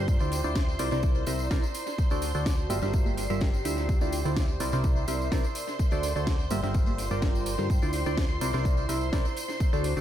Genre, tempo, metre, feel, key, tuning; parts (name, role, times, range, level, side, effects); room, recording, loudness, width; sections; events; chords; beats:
piano house; 126 BPM; 4/4; straight; A4 = 437 Hz
string machine, violins; sustained chords; 0.0-10.0 s; C5 to C6; -38 LUFS; left 1 dB; ensemble chorus, sidechain pumping
percussive organ stab; riff; 0.0-10.0 s; C3 to E5; -32 LUFS; right 1 dB; chorus, phaser, sidechain pumping, tape echo
solid FM bass; bass; 0.0-10.0 s; G1 to G2; -31 LUFS; equal; tube saturation, sidechain pumping
airy breathy pad; texture; 0.0-10.0 s; E4 to C6; -37 LUFS; right 1 dB; chorus, sidechain pumping
electronic kick drum; drums; 0.1-9.7 s; -26 LUFS; equal; small room ambience
tambourine and congas; percussion; 0.1-10.0 s; -40 LUFS; equal; tape echo
house drum kit; drums; 0.3-9.9 s; hi-hat, snare drum; -38 LUFS; equal; small room ambience, tape echo
light reverb; echo-heavy mix; -25 LUFS; side -11 dB against mid
0.0-10.0 A section
0.1 Dm9; 0.8 C9; 2.0 D7; 2.7 Gm7; 3.9 Dm9; 4.6 C9; 5.8 D7; 6.5 Gm7; 7.7 Dm9; 8.4 C9
| 0.08 0.56 1.03 1.51 | 1.98 2.46 2.94 3.41 | 3.89 4.37 4.84 5.32 | 5.79 6.27 6.75 7.22 | 7.70 8.18 8.65 9.13 | 9.60